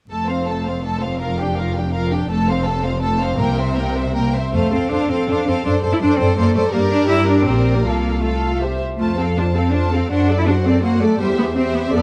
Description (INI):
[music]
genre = quick classical-period movement for symphony orchestra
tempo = 163 BPM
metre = 3/4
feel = rubato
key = F major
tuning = A4 = 440 Hz
[part]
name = rich studio violin section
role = melody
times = 0.1-12.0 s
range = D5 to A5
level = -30 LUFS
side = equal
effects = none
[part]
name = rich studio violin section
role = second line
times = 0.1-12.0 s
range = G4 to D5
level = -28 LUFS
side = equal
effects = none
[part]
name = dark studio viola section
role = accompaniment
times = 0.1-12.0 s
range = A3 to A4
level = -26 LUFS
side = equal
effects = none
[part]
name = rich studio cello section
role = bass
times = 0.1-12.0 s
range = F2 to E4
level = -23 LUFS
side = equal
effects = none
[part]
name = rich studio double bass section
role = bass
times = 0.1-12.0 s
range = F1 to G2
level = -24 LUFS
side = equal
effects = none
[sound]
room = light reverb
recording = vinyl crackle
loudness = -18 LUFS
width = mono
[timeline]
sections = 0.1-4.5 A section; 4.5-12.0 B section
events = none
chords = 0.1 F; 1.2 Gm7/F; 2.3 F; 3.4 C7; 4.5 F; 5.6 D7/F#; 6.7 Gm; 7.5 Gm/Bb; 7.8 F/C; 8.6 C; 9.0 F; 10.1 D7/F#; 11.2 C/E